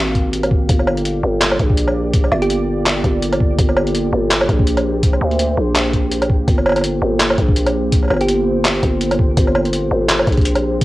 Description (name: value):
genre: half-time drum and bass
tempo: 166 BPM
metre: 4/4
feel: swing 57% on 16ths, half-time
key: G phrygian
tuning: A4 = 441 Hz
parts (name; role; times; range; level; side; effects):
- deep dark ambient pad; sustained chords; 0.0-10.8 s; Bb3 to F5; -23 LUFS; equal; chorus, built-in reverb, sidechain pumping, cassette tape
- growling 808-style bass; bass; 0.0-10.8 s; G1 to D2; -18 LUFS; equal; none
- boom bap sampler-style drum kit; drums; 0.2-10.8 s; handclaps, hi-hat, woodblock; -18 LUFS; equal; cassette tape
- electronic kick drum; drums; 0.2-10.8 s; none; -16 LUFS; equal; cassette tape
- thumb-piano-like synth pluck; melody; 2.4-2.9, 8.2-8.7 s; G4; -23 LUFS; right 2 dB; chorus, phaser, cassette tape, tape echo
room: light reverb, digital ambience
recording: home recording on cassette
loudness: -14 LUFS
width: side -18 dB against mid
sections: 0.0-10.8 A section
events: none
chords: 0.0 Gm